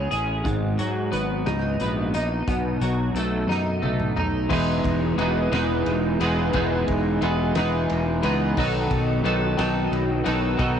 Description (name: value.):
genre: indie rock.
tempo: 59 BPM (dotted quarters).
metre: 6/8.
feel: straight.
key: E major.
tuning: A4 = 440 Hz.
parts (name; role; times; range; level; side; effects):
twelve-string electric guitar; riff; 0.0-10.8 s; G#2 to A4; -22 LUFS; equal; double-tracked left and right, cassette tape.
fuzz fingered electric bass; bass; 0.0-10.8 s; E1 to G#2; -27 LUFS; equal; overdrive.
loose indie drum kit; drums; 0.1-10.8 s; crash cymbal, hi-hat, kick drum, ride cymbal, snare drum, toms; -31 LUFS; equal; cassette tape.
room: small room ambience.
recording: home recording on cassette.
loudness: -21 LUFS.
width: side -8 dB against mid.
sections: 0.0-4.5 A section; 4.5-10.8 B section.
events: drum fill 3.5-4.5.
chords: 0.4 G#m7; 2.5 B7; 4.5 Emaj7; 8.6 B7.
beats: | 0.44 1.46 | 2.48 3.50 | 4.52 5.54 | 6.55 7.56 | 8.58 9.59 | 10.60.